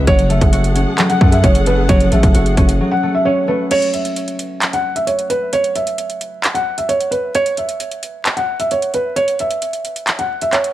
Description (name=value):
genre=hip hop, trap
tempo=132 BPM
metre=4/4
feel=half-time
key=F# minor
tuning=A4 = 440 Hz
part: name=felt-muted upright piano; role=melody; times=0.0-10.7 s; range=B4 to F#5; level=-18 LUFS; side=right 1 dB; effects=low-pass filter, tape echo
part: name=concert harp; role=accompaniment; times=0.0-6.8 s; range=C#3 to C#5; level=-19 LUFS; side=left 1 dB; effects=low-pass filter
part: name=dark symphonic string section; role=sustained chords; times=0.0-3.7 s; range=G#4 to F#5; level=-24 LUFS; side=left 1 dB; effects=none
part: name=distorted 808-style bass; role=bass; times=0.0-2.8 s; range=F#1 to F#2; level=-16 LUFS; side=equal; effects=distortion
part: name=trap drum kit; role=drums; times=0.1-10.7 s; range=crash cymbal, handclaps, hi-hat, kick drum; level=-17 LUFS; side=equal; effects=overdrive
room=light reverb, studio reverb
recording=vinyl crackle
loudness=-14 LUFS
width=side -14 dB against mid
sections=0.0-3.7 A section; 3.7-10.7 B section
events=break 2.8-3.7, 3.7-10.7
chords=0.1 F#madd9; 3.7 N.C.